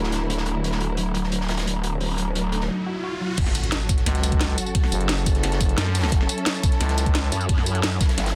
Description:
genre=dark technical drum and bass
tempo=175 BPM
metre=4/4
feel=straight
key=F# minor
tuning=A4 = 441 Hz
part: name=dark studio string section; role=sustained chords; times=0.0-8.4 s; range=D3 to A4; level=-32 LUFS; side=equal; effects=sidechain pumping
part: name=growl bass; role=bass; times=0.0-3.5, 6.1-8.4 s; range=D1 to F#2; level=-28 LUFS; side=equal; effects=chorus, tube saturation
part: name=crunchy breakbeat drum kit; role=drums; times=0.0-8.3 s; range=hi-hat, snare drum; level=-36 LUFS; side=equal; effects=high-pass filter on hats, high-pass filter on snare, high-pass filter on room
part: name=soft round pluck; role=arpeggios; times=0.1-3.4 s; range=F#3 to F#4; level=-32 LUFS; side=equal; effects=subtle chorus, sidechain pumping, tape echo
part: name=riser and impact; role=sound effects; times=1.9-4.7 s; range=none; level=-33 LUFS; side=equal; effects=none
part: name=drum and bass drum kit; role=drums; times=3.4-8.3 s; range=crash cymbal, hi-hat, snare drum, tambourine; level=-29 LUFS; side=equal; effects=none
part: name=electronic kick drum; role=drums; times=3.4-8.1 s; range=none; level=-24 LUFS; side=equal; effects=none
part: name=growling FM bass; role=bass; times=4.1-7.3 s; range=F#1 to F#2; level=-25 LUFS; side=equal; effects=none
room=digital ambience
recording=dense, heavily limited modern master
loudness=-23 LUFS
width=mono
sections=0.0-3.4 A section; 3.4-8.4 B section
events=riser 1.9-3.4; drop 3.4-8.4; impact 3.4-4.7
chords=0.0 D; 3.4 F#m

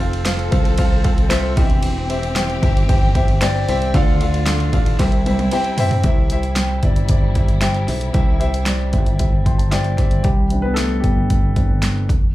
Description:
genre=piano-driven pop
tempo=114 BPM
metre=4/4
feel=straight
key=C major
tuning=A4 = 440 Hz
part: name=warm concert grand piano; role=accompaniment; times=0.0-12.1 s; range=C3 to C6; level=-22 LUFS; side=left 2 dB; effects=slapback echo
part: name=warm studio string section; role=sustained chords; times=0.0-10.2 s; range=C3 to A4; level=-29 LUFS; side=equal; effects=none
part: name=fingered electric bass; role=bass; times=0.0-12.3 s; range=E1 to D2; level=-20 LUFS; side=equal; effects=none
part: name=deep house drum kit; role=drums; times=0.1-12.2 s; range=hi-hat, kick drum, ride cymbal, snare drum, toms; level=-18 LUFS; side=equal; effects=none
room=little or no reverb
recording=live gig heard through the venue's PA, club reverb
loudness=-15 LUFS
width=side -16 dB against mid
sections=0.0-6.0 A section; 6.0-10.3 B section; 10.3-12.3 C section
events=drum fill 5.0-6.0; grand piano fill 9.2-10.3; grand piano solo 10.3-12.3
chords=0.0 F; 1.6 C/E; 3.9 Dm; 5.0 C

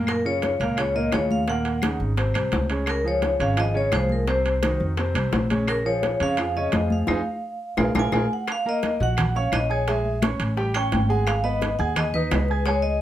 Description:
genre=Afro-Cuban jazz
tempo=171 BPM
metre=4/4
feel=straight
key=Bb minor, Eb minor from 8.5 s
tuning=A4 = 440 Hz
part: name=clear grand piano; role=accompaniment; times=0.0-13.0 s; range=Bb2 to Ab6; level=-27 LUFS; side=right 1 dB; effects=none
part: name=upright bass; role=bass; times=0.0-13.0 s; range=Ab1 to Gb2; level=-26 LUFS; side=equal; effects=none
part: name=vibraphone with medium hard mallets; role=melody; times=0.1-13.0 s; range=Bb4 to Ab5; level=-26 LUFS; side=left 1 dB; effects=none
part: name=bongos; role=percussion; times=0.1-12.8 s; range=none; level=-32 LUFS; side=left 4 dB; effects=none
part: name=claves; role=percussion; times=0.1-12.5 s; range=none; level=-35 LUFS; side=left 4 dB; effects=none
part: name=congas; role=percussion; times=0.1-13.0 s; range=none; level=-28 LUFS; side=left 1 dB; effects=none
part: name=timbales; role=percussion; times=0.1-12.8 s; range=none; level=-31 LUFS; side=right 4 dB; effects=none
room=moderate studio reverb, RT60 0.6 s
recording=none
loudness=-21 LUFS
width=side -12 dB against mid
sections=0.0-8.5 A section; 8.5-13.0 B section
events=band accent 7.1-8.5; drum fill 7.4-8.5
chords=0.1 Gbmaj7; 1.5 Ebm7; 2.2 Ab; 2.9 Db; 4.3 Cdim; 5.0 F5; 5.7 Bbm7; 7.1 Fm7; 7.8 Bb5; 8.5 Ebm7; 9.9 Bbm7b5; 10.6 A7; 11.3 Abmadd11

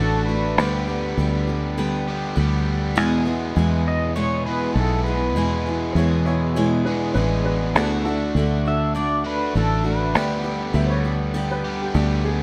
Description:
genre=rock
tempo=100 BPM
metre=4/4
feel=straight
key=unclear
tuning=A4 = 440 Hz
part: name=pedal steel guitar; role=melody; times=0.0-11.6 s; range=A4 to E5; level=-30 LUFS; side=equal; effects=none
part: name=picked steel-string acoustic guitar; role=accompaniment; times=0.0-12.4 s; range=E2 to G#4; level=-28 LUFS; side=equal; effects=none
part: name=crunchy overdriven guitar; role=riff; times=0.0-12.4 s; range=E2 to G#4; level=-29 LUFS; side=equal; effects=none
part: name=fingered electric bass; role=bass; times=0.0-12.4 s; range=A1 to E2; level=-25 LUFS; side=equal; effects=none
part: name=warm upright piano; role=second line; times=5.9-12.4 s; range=B3 to E5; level=-31 LUFS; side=equal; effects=none
room=moderate studio ambience, RT60 0.5 s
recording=rough home demo mix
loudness=-22 LUFS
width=mono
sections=0.0-12.4 A section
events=none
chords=0.0 D; 0.6 G/D; 3.0 E; 7.8 D; 10.2 G/D

